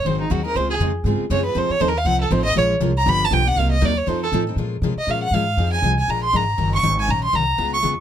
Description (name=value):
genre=acoustic string swing (jazz manouche)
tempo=239 BPM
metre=4/4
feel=swing 56% on 8ths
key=Bb minor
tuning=A4 = 440 Hz
part: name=warm violin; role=melody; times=0.0-7.8 s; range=Eb4 to Db6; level=-20 LUFS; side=right 1 dB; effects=none
part: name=upright bass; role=bass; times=0.0-8.0 s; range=Gb1 to C3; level=-22 LUFS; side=equal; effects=none
part: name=picked steel-string acoustic guitar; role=accompaniment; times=0.1-7.9 s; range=C3 to Bb4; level=-25 LUFS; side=left 7 dB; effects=none
part: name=picked steel-string acoustic guitar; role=accompaniment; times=0.1-4.4 s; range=C3 to Bb4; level=-27 LUFS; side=right 11 dB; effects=none
room=little or no reverb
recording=close, detailed microphones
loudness=-17 LUFS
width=side -10 dB against mid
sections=0.0-4.6 A section; 4.6-8.0 A section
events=violin solo 0.0-8.0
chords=0.1 Ab7; 0.6 Dbmaj7; 1.6 F7; 2.6 Bbm9; 3.1 G7; 3.6 Cm7b5; 4.1 F7; 4.6 Bbm9; 5.6 Fm7; 6.1 Bb7; 6.6 Ebm7